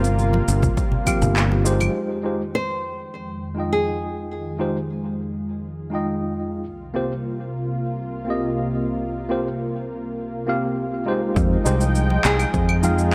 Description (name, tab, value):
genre	sunset chillout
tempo	102 BPM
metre	4/4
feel	straight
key	F minor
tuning	A4 = 437 Hz
part	nylon-string guitar	melody	0.0-6.3, 12.3-13.1 s	F4 to C5	-29 LUFS	equal	digital delay
part	tine electric piano	accompaniment	0.0-13.1 s	Ab3 to G5	-28 LUFS	equal	overdrive, delay
part	lush unison pad	sustained chords	0.0-13.1 s	C2 to G5	-30 LUFS	equal	chorus
part	fingered electric bass	bass	0.0-1.9, 11.4-13.1 s	G1 to F2	-22 LUFS	equal	none
part	electronic shaker, claves and handclaps	drums	0.0-1.9, 11.4-13.1 s	none	-28 LUFS	equal	overdrive, low-pass filter on perc, studio ambience, low-pass filter on snare
part	congas	percussion	0.0-1.9, 12.1-13.0 s	none	-30 LUFS	equal	none
part	electronic kick drum	drums	0.6-1.2, 11.4-12.7 s	none	-26 LUFS	equal	overdrive, studio ambience
room	light reverb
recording	none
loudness	-23 LUFS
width	mono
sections	0.0-2.0 A section; 2.0-11.4 B section; 11.4-13.1 C section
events	filter sweep on analog synth pad 2.0-11.4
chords	0.0 C7sus4; 2.0 Fm9; 6.7 C7sus4